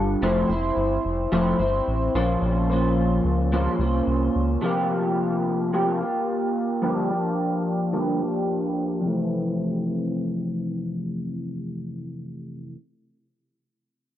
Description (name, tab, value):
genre	indie pop, bedroom pop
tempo	109 BPM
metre	4/4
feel	swing 55% on 16ths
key	F major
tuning	A4 = 441 Hz
part	electric guitar through a small old amp	accompaniment	0.0-12.8 s	F2 to C5	-23 LUFS	equal	analog chorus, vibrato effect, low-pass filter
part	round analog bass	bass	0.0-4.6 s	F1 to Db2	-25 LUFS	equal	tube saturation
room	light reverb, digital ambience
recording	worn, warbling old tape, cassette tape, warbly pitch drift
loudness	-22 LUFS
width	side -12 dB against mid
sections	0.2-9.0 A section; 9.0-11.2 B section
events	filter sweep on clean electric guitar 0.2-9.0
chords	0.2 Fmaj7; 2.1 Bbmadd9; 4.6 C7sus4; 6.8 Gm7; 9.0 Fmaj7